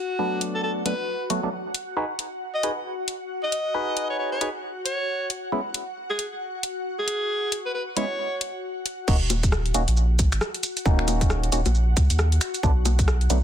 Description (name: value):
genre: UK garage, two-step garage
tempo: 135 BPM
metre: 4/4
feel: swing 60% on 16ths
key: Eb minor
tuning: A4 = 440 Hz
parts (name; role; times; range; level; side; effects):
- breathy alto saxophone; melody; 0.0-8.4 s; F#4 to Eb5; -27 LUFS; equal; digital delay
- ethereal airy pad; sustained chords; 0.0-13.4 s; Gb4 to Gb5; -34 LUFS; left 2 dB; ensemble chorus, built-in reverb, phaser, sidechain pumping
- percussive organ stab; stabs; 0.2-13.4 s; F#3 to Cb5; -27 LUFS; equal; chorus, digital delay
- garage drum kit; drums; 0.4-13.4 s; bongos, crash cymbal, finger snaps, hi-hat, rim click, shaker; -27 LUFS; left 1 dB; studio ambience
- saturated sub bass; bass; 9.1-13.4 s; Eb1 to Eb2; -21 LUFS; equal; sidechain pumping
- electronic kick drum; drums; 9.1-13.1 s; none; -22 LUFS; equal; studio ambience
room: light reverb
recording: dense, heavily limited modern master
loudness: -22 LUFS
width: side -10 dB against mid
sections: 0.0-9.1 A section; 9.1-13.4 B section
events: drop 9.1-13.4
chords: 0.0 Bm7; 1.7 Abm7; 5.3 N.C.; 9.1 Ebm7; 12.4 Bm7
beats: | 0.19 0.63 1.08 1.52 | 1.97 2.41 2.86 3.30 | 3.74 4.19 4.63 5.08 | 5.52 5.97 6.41 6.86 | 7.30 7.74 8.19 8.63 | 9.08 9.52 9.97 10.41 | 10.86 11.30 11.74 12.19 | 12.63 13.08